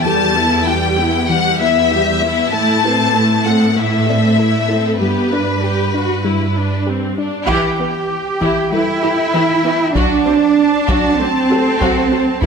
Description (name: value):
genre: cinematic, hybrid orchestral and electronic film score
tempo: 97 BPM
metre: 4/4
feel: straight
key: E minor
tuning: A4 = 440 Hz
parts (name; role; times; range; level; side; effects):
- warm symphonic violin section; melody; 0.0-6.8 s; B4 to A5; -17 LUFS; left 5 dB; none
- warm symphonic viola section; accompaniment; 0.0-12.5 s; E3 to B4; -21 LUFS; equal; none
- warm symphonic cello section; bass; 0.0-12.5 s; E2 to G4; -16 LUFS; right 3 dB; none
- dark baby grand piano; texture; 0.0-12.5 s; A3 to D5; -27 LUFS; left 1 dB; ping-pong delay
- soft round pluck; arpeggios; 0.1-12.5 s; E3 to A4; -25 LUFS; left 3 dB; chorus, ping-pong delay
- rich symphonic violin section; second line; 7.5-12.5 s; E4 to B5; -20 LUFS; left 1 dB; none
- taiko ensemble; drums; 7.5-12.5 s; none; -22 LUFS; equal; none
room: moderate scoring stage reverb, RT60 1.9 s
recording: none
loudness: -13 LUFS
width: side -6 dB against mid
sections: 0.0-7.5 A section; 7.5-12.5 B section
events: band accent 7.5-8.1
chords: 0.0 Em; 2.5 Am; 5.0 G; 7.5 Em; 10.0 F#dim